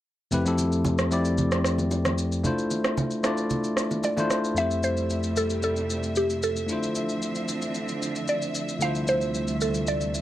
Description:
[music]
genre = amapiano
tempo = 113 BPM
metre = 4/4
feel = straight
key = unclear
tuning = A4 = 440 Hz
[part]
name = barky tine electric piano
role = accompaniment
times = 0.3-10.2 s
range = F2 to D5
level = -26 LUFS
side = left 1 dB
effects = none
[part]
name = electronic shaker and rim click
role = drums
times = 0.3-10.2 s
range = none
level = -31 LUFS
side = right 1 dB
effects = vintage 12-bit sampler grit
[part]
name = congas and bongos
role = percussion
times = 0.3-4.3 s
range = none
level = -31 LUFS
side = right 2 dB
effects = none
[part]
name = mallet-like synth pluck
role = melody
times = 4.0-10.2 s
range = G4 to F5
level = -28 LUFS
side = right 1 dB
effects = chorus, phaser, analog delay
[part]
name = warm studio string section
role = sustained chords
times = 4.6-10.2 s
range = D2 to E5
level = -32 LUFS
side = right 2 dB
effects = none
[sound]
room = light reverb, digital ambience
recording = dark, warm production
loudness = -23 LUFS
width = side -13 dB against mid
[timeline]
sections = 0.3-4.6 A section; 4.6-10.2 B section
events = kick muted 3.5-4.6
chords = 0.3 Fmaj9; 2.4 Dm9; 4.6 Fmaj9; 6.7 Dm9; 8.8 G13sus4/D

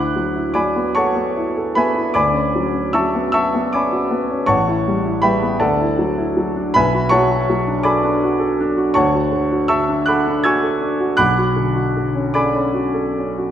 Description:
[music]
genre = classical, impressionist solo piano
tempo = 53 BPM (dotted quarters)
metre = 6/8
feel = uneven beats, rubato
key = D lydian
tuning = A4 = 441 Hz
[part]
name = warm grand piano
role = solo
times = 0.0-13.5 s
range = A1 to G#6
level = -15 LUFS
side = equal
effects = none
[sound]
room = wet concert hall reverb, RT60 1.8 s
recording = none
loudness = -15 LUFS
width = side -10 dB against mid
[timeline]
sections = 0.0-13.5 A section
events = none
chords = 0.0 D69; 4.5 A13; 5.6 Dadd9; 6.8 Bm9; 9.0 Dmaj7; 11.2 Bm9

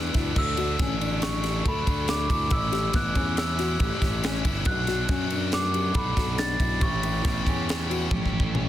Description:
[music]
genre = math rock and midwest emo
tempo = 140 BPM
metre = 5/4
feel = straight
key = unclear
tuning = A4 = 440 Hz
[part]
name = nylon-string guitar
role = arpeggios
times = 0.0-8.7 s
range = B3 to A4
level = -33 LUFS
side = left 8 dB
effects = none
[part]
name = biting overdriven guitar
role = riff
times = 0.0-8.7 s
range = G2 to G4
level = -32 LUFS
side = right 1 dB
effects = none
[part]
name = fuzz fingered electric bass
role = bass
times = 0.0-8.7 s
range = G1 to F#2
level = -29 LUFS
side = equal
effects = overdrive
[part]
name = crisp fusion drum kit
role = drums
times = 0.1-8.6 s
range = crash cymbal, kick drum, ride cymbal, snare drum, toms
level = -27 LUFS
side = equal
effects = none
[part]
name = glockenspiel with rubber mallets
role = melody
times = 0.4-8.5 s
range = B5 to A6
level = -30 LUFS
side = right 1 dB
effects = none
[sound]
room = little or no reverb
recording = dense, heavily limited modern master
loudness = -23 LUFS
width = side -12 dB against mid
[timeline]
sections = 0.0-8.7 A section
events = drum fill 8.1-8.7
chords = 0.4 Dmaj9; 2.5 A7; 4.7 Bm7; 6.8 A7

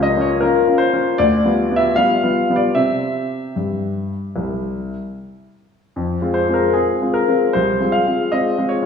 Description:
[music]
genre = classical-period piano sonatina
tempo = 76 BPM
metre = 4/4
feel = rubato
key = F minor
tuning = A4 = 440 Hz
[part]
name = clear grand piano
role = solo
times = 0.0-8.9 s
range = C2 to F5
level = -16 LUFS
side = left 1 dB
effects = none
[sound]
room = wet recital hall reverb, RT60 1.3 s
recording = heard from further back in the room, small room ambience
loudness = -16 LUFS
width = side -6 dB against mid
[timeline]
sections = 0.0-8.9 A section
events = none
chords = 0.0 Bbm/Db; 1.2 G7/D; 2.7 C; 6.0 Fm

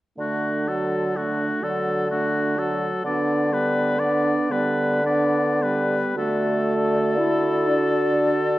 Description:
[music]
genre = classical, slow romantic movement for wind quintet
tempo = 34-43 BPM (dotted quarters)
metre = 6/8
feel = rubato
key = D major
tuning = A4 = 441 Hz
[part]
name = warm oboe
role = second line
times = 0.2-8.6 s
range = F#4 to D5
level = -26 LUFS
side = left 2 dB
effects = none
[part]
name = clear French horn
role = accompaniment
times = 0.2-8.5 s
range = F#3 to E4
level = -27 LUFS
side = equal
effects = none
[part]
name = warm clarinet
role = accompaniment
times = 0.2-8.6 s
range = B3 to F#4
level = -26 LUFS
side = right 3 dB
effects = none
[part]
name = mellow bassoon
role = bass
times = 0.2-8.6 s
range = D3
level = -24 LUFS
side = equal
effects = none
[part]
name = mellow silver concert flute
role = melody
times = 6.2-8.6 s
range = D5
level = -28 LUFS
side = left 4 dB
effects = none
[sound]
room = wet scoring stage reverb, RT60 1.7 s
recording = worn, warbling old tape, cassette tape, warbly pitch drift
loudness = -20 LUFS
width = side -16 dB against mid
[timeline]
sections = 0.2-6.2 A section; 6.2-8.6 B section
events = none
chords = 0.2 D; 3.0 G/D; 6.2 D

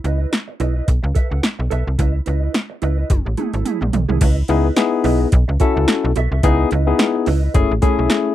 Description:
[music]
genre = early-eighties boogie funk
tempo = 108 BPM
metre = 4/4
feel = swing 56% on 16ths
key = C# minor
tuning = A4 = 440 Hz
[part]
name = mellow electric guitar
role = riff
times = 0.0-8.3 s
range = A3 to F#5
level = -26 LUFS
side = right 8 dB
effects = analog chorus
[part]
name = slap-like FM bass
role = bass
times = 0.0-8.1 s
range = F#1 to C#2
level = -18 LUFS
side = equal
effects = none
[part]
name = electro analog drum machine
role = drums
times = 0.0-8.2 s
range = crash cymbal, hi-hat, kick drum, snare drum, toms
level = -18 LUFS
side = equal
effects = overdrive
[part]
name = barky tine electric piano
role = accompaniment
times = 4.5-8.3 s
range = A3 to A4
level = -17 LUFS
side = left 6 dB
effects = none
[sound]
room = little or no reverb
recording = dry, close 1970s-style studio recording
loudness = -15 LUFS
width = side -13 dB against mid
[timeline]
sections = 0.0-4.2 A section; 4.2-8.3 B section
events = drum fill 3.1-4.2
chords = 0.0 C#m9; 0.9 B7sus4; 2.0 C#m9; 3.1 F#m9 (rootless); 4.2 C#m9; 5.3 B7sus4; 6.4 C#m9; 7.5 F#m9

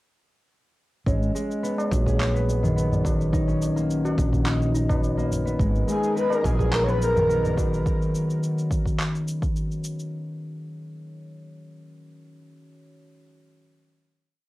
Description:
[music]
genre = organic downtempo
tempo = 106 BPM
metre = 4/4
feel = straight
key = G# minor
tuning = A4 = 441 Hz
[part]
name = concert harp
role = arpeggios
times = 1.1-10.4 s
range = D#3 to G#4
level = -26 LUFS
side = equal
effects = cassette tape, tape echo
[part]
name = woody fretless electric bass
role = bass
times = 1.1-7.8 s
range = G#1 to A#1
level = -25 LUFS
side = equal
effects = tube saturation
[part]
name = electronic kick drum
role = drums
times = 1.1-9.5 s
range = none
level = -26 LUFS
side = equal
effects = cassette tape
[part]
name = electronic shaker and handclaps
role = drums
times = 1.1-10.1 s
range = none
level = -34 LUFS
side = equal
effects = cassette tape
[part]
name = bronze singing bowl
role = texture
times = 1.1-10.1 s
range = C#4 to C#5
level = -38 LUFS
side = equal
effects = cassette tape
[part]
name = tabla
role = percussion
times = 1.8-7.7 s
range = none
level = -33 LUFS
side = left 1 dB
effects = none
[part]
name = warm analog pad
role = sustained chords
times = 5.6-7.8 s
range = G#3 to A#4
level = -33 LUFS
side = right 1 dB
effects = chorus, sidechain pumping, cassette tape, plate reverb
[part]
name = breathy flute-like synth lead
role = melody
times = 5.9-7.5 s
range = G#4 to C#5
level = -25 LUFS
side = left 1 dB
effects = analog chorus, cassette tape, tape echo, plate reverb
[sound]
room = moderate studio ambience, RT60 0.5 s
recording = home recording on cassette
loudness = -21 LUFS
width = side -18 dB against mid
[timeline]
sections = 1.1-10.1 groove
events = none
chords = 1.1 G#madd9

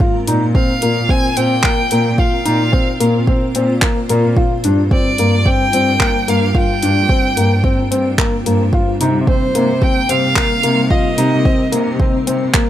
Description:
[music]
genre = piano and strings electronica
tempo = 110 BPM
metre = 4/4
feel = straight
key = C minor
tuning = A4 = 440 Hz
[part]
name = granular cloud pad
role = sustained chords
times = 0.0-12.7 s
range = G3 to C5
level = -25 LUFS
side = equal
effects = built-in reverb
[part]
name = felt-muted upright piano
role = riff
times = 0.0-12.7 s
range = Bb3 to F4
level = -18 LUFS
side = left 2 dB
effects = tape echo
[part]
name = electronic kick drum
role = drums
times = 0.0-12.7 s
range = none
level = -16 LUFS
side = right 1 dB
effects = overdrive
[part]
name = dark chamber cello section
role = bass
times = 0.3-12.5 s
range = G2 to C3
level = -19 LUFS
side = equal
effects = sidechain pumping
[part]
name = deep house drum kit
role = drums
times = 0.3-12.7 s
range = handclaps, hi-hat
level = -19 LUFS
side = equal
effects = overdrive
[part]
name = clear violin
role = melody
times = 0.6-12.0 s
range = C5 to Ab5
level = -20 LUFS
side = right 1 dB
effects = none
[sound]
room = small room ambience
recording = none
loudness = -12 LUFS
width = side -12 dB against mid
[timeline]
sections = 0.0-12.7 A section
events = none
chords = 0.0 Bbsus2; 4.4 Gm7; 8.7 Cm7

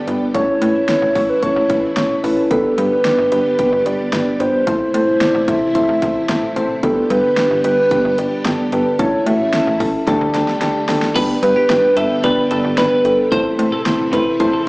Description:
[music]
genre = synth-pop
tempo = 111 BPM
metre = 4/4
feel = straight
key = G major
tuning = A4 = 441 Hz
[part]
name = hollow clarinet-like synth lead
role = melody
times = 0.0-13.6 s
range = A4 to E5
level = -17 LUFS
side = right 1 dB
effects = chorus, slapback echo
[part]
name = string machine, full ensemble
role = sustained chords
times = 0.0-14.7 s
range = C3 to G4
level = -24 LUFS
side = equal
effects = ensemble chorus
[part]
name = soft electric-piano-like synth keys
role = accompaniment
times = 0.1-14.6 s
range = A3 to D5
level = -18 LUFS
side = left 1 dB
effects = chorus
[part]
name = slap-like FM bass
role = bass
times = 0.1-14.5 s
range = G1 to A2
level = -22 LUFS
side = equal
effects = none
[part]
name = pop drum kit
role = drums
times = 0.1-14.5 s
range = crash cymbal, hi-hat, kick drum, snare drum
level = -23 LUFS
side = equal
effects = overdrive
[part]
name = twelve-string electric guitar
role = second line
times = 11.2-14.6 s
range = G4 to C5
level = -21 LUFS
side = equal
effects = phaser, slapback echo
[sound]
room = wet plate reverb, RT60 1.8 s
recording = played on a big sound system in a bare room, large studio reverb, small speaker sound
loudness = -14 LUFS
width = side -24 dB against mid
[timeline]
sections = 0.0-11.2 A section; 11.2-14.7 B section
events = drum fill 10.1-11.2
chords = 0.3 A; 2.5 G; 4.7 Am; 6.8 G; 9.0 A; 10.1 Dsus4; 11.2 G; 13.3 Am

